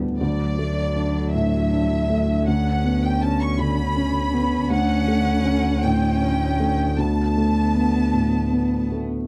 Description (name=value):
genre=neoclassical piano and strings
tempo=53 BPM (dotted quarters)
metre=6/8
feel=rubato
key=unclear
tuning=A4 = 440 Hz
part: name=felt-muted upright piano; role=accompaniment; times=0.0-9.3 s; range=D2 to D4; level=-24 LUFS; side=equal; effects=none
part: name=warm double bass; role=bass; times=0.0-9.3 s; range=D2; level=-26 LUFS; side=equal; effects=none
part: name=rich studio violin section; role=melody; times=0.2-8.9 s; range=D5 to C#6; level=-30 LUFS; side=equal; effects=none
part: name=rich cello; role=second line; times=0.2-9.1 s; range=F#3 to C#4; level=-31 LUFS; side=equal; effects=none
room=studio reverb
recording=dry, close 1970s-style studio recording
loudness=-21 LUFS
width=mono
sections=0.0-9.3 A section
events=none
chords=0.2 D; 2.5 Bmadd9/D; 4.7 A/D; 7.0 Bm7/D